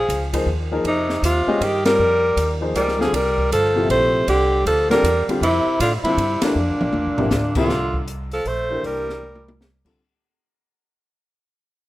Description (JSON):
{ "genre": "modal jazz", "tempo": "158 BPM", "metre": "3/4", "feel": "swing 64% on 8ths", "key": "unclear", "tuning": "A4 = 439 Hz", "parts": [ { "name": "breathy alto saxophone", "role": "melody", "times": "0.0-9.6 s", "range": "D4 to C5", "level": "-20 LUFS", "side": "equal", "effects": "none" }, { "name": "clear tenor saxophone", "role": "second line", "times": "0.0-9.6 s", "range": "Bb2 to A3", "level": "-26 LUFS", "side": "right 2 dB", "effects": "none" }, { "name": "upright bass", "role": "bass", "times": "0.0-9.9 s", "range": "G1 to A2", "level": "-25 LUFS", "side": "equal", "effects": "none" }, { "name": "open jazz drum kit", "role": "drums", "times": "0.1-9.9 s", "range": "crash cymbal, hi-hat, kick drum, ride cymbal, snare drum, toms", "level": "-27 LUFS", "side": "equal", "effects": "none" }, { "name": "warm upright piano", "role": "accompaniment", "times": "0.3-10.0 s", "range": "Bb2 to Eb5", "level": "-24 LUFS", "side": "left 2 dB", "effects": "none" } ], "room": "light reverb, small room ambience", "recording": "rough home demo mix", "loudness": "-17 LUFS", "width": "side -16 dB against mid", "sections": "0.0-7.7 A section; 7.7-10.0 B section", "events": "band accent 1.8, 6.4; drum fill 6.6-7.3, 9.2-9.6; fade-out 7.7-10.0", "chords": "0.0 Bb13sus4; 3.1 C13sus4", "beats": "0.09 0.47 | 0.85 1.23 1.61 | 1.99 2.37 2.75 | 3.13 3.51 3.90 | 4.28 4.66 5.04 | 5.42 5.80 6.18 | 6.56 6.94 7.32 | 7.70 8.08 8.46 | 8.84 9.22 9.60" }